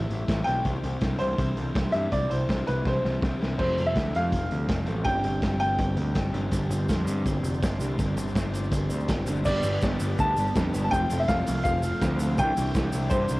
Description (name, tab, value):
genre	indie rock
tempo	164 BPM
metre	4/4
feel	straight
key	unclear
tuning	A4 = 439 Hz
part	bright upright piano	melody	0.0-6.3, 9.5-13.4 s	B4 to A5	-28 LUFS	equal	cassette tape, plate reverb
part	mellow electric guitar	riff	0.0-13.4 s	G2 to A4	-32 LUFS	right 2 dB	analog chorus, cassette tape
part	raw garage guitar	riff	0.0-13.4 s	F2 to F4	-34 LUFS	left 3 dB	overdrive, cassette tape
part	growling picked electric bass	bass	0.0-13.4 s	F1 to G2	-29 LUFS	equal	overdrive
part	raw garage drum kit	drums	0.1-13.4 s	crash cymbal, hi-hat, kick drum, snare drum	-29 LUFS	equal	cassette tape
part	tonewheel organ	sustained chords	6.5-13.4 s	G4 to C6	-40 LUFS	equal	slow rotary speaker, cassette tape, plate reverb
part	tube shaker	percussion	6.5-13.4 s	none	-45 LUFS	right 2 dB	none
room	moderate studio ambience, RT60 0.5 s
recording	home recording on cassette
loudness	-23 LUFS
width	side -20 dB against mid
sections	0.0-3.6 A section; 3.6-9.5 B section; 9.5-13.4 C section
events	drum fill 2.9-3.6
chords	0.0 Am; 0.7 Cadd9; 3.6 Fadd9; 5.1 Gsus4; 9.5 G; 10.9 F; 12.4 Cadd9